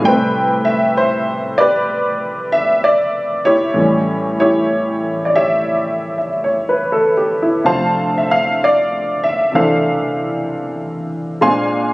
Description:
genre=solo jazz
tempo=64 BPM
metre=4/4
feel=swing 66% on 8ths, rubato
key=unclear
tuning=A4 = 442 Hz
part: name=honky-tonk upright piano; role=solo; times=0.0-11.9 s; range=D2 to C6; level=-14 LUFS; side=equal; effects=none
room=light reverb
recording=recorded on a phone in the room, club ambience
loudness=-14 LUFS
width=side -21 dB against mid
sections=0.0-11.9 A section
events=none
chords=0.1 Am9; 3.8 A7; 7.6 Dm9; 11.4 Bb9

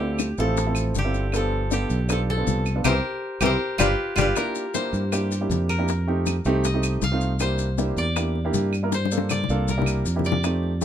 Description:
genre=Afro-Cuban jazz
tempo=158 BPM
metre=4/4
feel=straight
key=C mixolydian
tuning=A4 = 440 Hz
part: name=koto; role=melody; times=0.0-10.8 s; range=F4 to F5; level=-28 LUFS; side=left 2 dB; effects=none
part: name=breathy tenor saxophone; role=second line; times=0.0-4.3 s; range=D3 to G3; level=-31 LUFS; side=left 5 dB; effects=none
part: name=warm upright piano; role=accompaniment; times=0.0-10.8 s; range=A3 to Bb4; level=-27 LUFS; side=right 2 dB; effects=none
part: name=modern bright fingered electric bass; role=bass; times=0.0-10.8 s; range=G1 to G2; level=-24 LUFS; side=equal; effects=none
part: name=bongos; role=percussion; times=0.0-10.8 s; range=none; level=-29 LUFS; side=left 10 dB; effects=none
part: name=claves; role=percussion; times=0.2-10.6 s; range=none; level=-32 LUFS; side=right 7 dB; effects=none
part: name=maracas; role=percussion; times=0.2-10.8 s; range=none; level=-34 LUFS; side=left 6 dB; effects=none
room=light reverb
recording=minimal, uncompressed stereo recording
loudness=-21 LUFS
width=side -10 dB against mid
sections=0.0-4.4 A section; 4.4-10.8 B section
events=drum fill 2.9-4.4, 8.9-10.4; band accent 2.9-4.4; koto solo 4.4-10.8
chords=0.0 Dm7; 1.3 G9; 2.9 C7; 3.6 G7; 4.4 C9; 5.9 F9; 7.4 C9; 8.9 Gm7; 9.7 C9

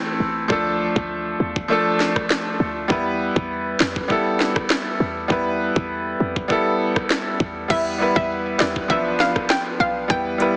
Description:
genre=dancehall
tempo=100 BPM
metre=4/4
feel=straight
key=unclear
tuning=A4 = 440 Hz
part: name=bright concert grand piano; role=accompaniment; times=0.0-10.6 s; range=E3 to B4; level=-24 LUFS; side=equal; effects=none
part: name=short 808-style bass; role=bass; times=0.2-10.5 s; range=A1 to F2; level=-29 LUFS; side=equal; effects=none
part: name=island pop drum kit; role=drums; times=0.5-10.5 s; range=crash cymbal, hi-hat, kick drum, rim click, snare drum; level=-26 LUFS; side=equal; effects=none
part: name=hollow square pluck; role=melody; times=7.7-10.2 s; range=D5 to G5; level=-25 LUFS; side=equal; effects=chorus, tape echo
room=light reverb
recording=heavily compressed radio sound, small speaker sound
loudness=-21 LUFS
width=mono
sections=0.0-7.7 A section; 7.7-10.6 B section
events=none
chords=0.0 Am; 0.5 Dm; 2.9 Em; 8.9 Bdim

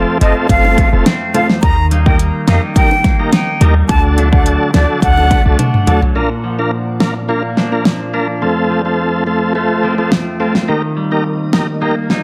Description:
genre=dancehall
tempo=106 BPM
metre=4/4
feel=straight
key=Bb major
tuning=A4 = 435 Hz
part: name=tonewheel organ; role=accompaniment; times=0.0-12.0 s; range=A3 to Bb4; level=-20 LUFS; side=equal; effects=chorus vibrato, sidechain pumping
part: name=clean electric guitar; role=arpeggios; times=0.0-12.2 s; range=F2 to Eb4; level=-23 LUFS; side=equal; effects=subtle chorus
part: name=clean 808-style bass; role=bass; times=0.0-5.6 s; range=F1 to F2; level=-15 LUFS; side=equal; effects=none
part: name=bright concert flute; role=melody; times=0.2-6.0 s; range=D5 to Bb5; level=-20 LUFS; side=equal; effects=tape echo
part: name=pop drum kit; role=drums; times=0.2-12.2 s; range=hi-hat, kick drum, snare drum, toms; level=-16 LUFS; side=equal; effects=overdrive
part: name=bongos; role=percussion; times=0.6-6.0 s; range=none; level=-27 LUFS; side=equal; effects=none
part: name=glassy FM pad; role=sustained chords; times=6.8-12.2 s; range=G3 to F5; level=-26 LUFS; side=equal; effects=ensemble chorus, built-in reverb, sidechain pumping
room=light reverb, digital ambience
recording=dense, heavily limited modern master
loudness=-13 LUFS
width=mono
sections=0.0-6.2 A section; 6.2-12.2 B section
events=drum fill 5.6-6.2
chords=0.0 F; 1.6 Eb; 3.9 D; 6.2 Bb; 8.4 F; 10.7 Eb

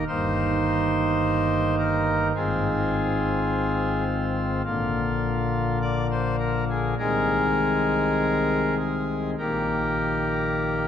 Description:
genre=classical, chorale-style piece for pipe organ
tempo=49-53 BPM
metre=4/4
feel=rubato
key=Eb major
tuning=A4 = 440 Hz
part: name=pipe organ, cornet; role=solo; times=0.0-10.9 s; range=G1 to D5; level=-22 LUFS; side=left 1 dB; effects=none
room=wet church reverb, RT60 3.5 s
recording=none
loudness=-22 LUFS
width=side -9 dB against mid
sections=0.0-10.9 A section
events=none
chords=0.1 Eb/G; 2.4 Fm7/Ab; 4.7 Bb; 7.0 Ab/C; 9.4 Eb/Bb

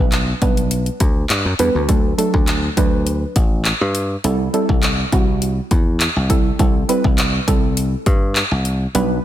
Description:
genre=dance-pop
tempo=102 BPM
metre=4/4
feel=straight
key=unclear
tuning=A4 = 440 Hz
part: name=soft round pluck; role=accompaniment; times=0.0-9.1 s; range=F#3 to B4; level=-20 LUFS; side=right 2 dB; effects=chorus, sidechain pumping
part: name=dry thumbed slap bass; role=bass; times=0.0-9.2 s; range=A1 to G2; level=-20 LUFS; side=equal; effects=sidechain pumping
part: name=pop drum kit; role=drums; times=0.1-9.1 s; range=handclaps, hi-hat, kick drum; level=-17 LUFS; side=equal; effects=none
room=light reverb, digital ambience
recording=none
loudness=-15 LUFS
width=side -12 dB against mid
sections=0.0-9.2 A section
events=none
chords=0.0 G/B; 1.9 D; 4.2 Am7/C; 6.6 C6

